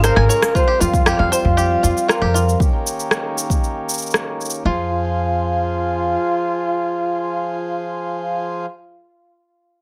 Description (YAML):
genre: folktronica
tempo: 117 BPM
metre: 4/4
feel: straight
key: F minor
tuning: A4 = 438 Hz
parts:
  - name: mellow flugelhorn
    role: melody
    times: 0.0-8.7 s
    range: F4 to C5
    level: -24 LUFS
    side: equal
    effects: delay
  - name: pedal harmonium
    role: sustained chords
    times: 0.0-8.7 s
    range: Db3 to C5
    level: -27 LUFS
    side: equal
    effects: low-pass filter
  - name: bluegrass banjo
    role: arpeggios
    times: 0.0-4.9 s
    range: F4 to Ab5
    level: -25 LUFS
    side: equal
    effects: delay
  - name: upright bass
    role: bass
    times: 0.0-6.2 s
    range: Ab1 to F2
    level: -22 LUFS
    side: equal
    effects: none
  - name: organic electronic drum kit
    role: drums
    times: 0.0-4.6 s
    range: hi-hat, rim click, shaker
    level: -23 LUFS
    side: equal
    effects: none
  - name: electronic kick drum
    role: drums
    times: 0.6-3.6 s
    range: none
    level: -20 LUFS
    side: equal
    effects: none
room: moderate studio reverb, RT60 0.6 s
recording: none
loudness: -19 LUFS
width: mono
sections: 0.6-4.7 A section; 4.7-8.8 B section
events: drum fill 0.0-0.6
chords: 0.0 Dbmaj7; 0.6 Fsus2; 2.6 Eb7; 4.7 Fm